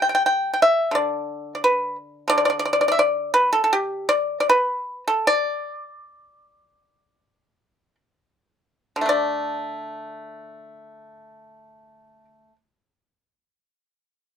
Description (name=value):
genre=chinese traditional, Chinese solo plucked strings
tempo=54-89 BPM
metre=4/4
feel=rubato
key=D zhi mode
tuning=A4 = 440 Hz
part: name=pipa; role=solo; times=0.0-12.6 s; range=D3 to G5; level=-19 LUFS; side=equal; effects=none
room=light reverb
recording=close, detailed microphones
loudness=-19 LUFS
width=side -8 dB against mid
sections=0.0-9.1 A section; 9.1-13.4 B section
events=slowing down 2.3-9.1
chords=none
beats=0.27 0.95 1.63 | 2.31 3.01 3.72 4.48 | 5.27 6.09 6.98 7.99 | 9.08 10.17 11.23 12.31